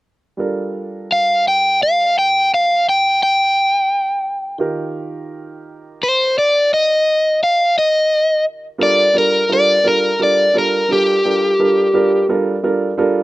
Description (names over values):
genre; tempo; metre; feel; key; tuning
blues; 57 BPM (dotted quarters); 12/8; straight; G minor; A4 = 440 Hz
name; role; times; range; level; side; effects
warm grand piano; accompaniment; 0.4-13.2 s; Eb3 to Bb4; -19 LUFS; right 3 dB; none
crunchy overdriven guitar; melody; 1.1-12.3 s; G4 to G5; -13 LUFS; equal; none
room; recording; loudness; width
light reverb; recorded outdoors, with no room sound; -13 LUFS; side -18 dB against mid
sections
0.4-8.8 A section; 8.8-13.2 B section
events
none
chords
0.4 Gm7; 4.6 Eb; 8.8 Gm7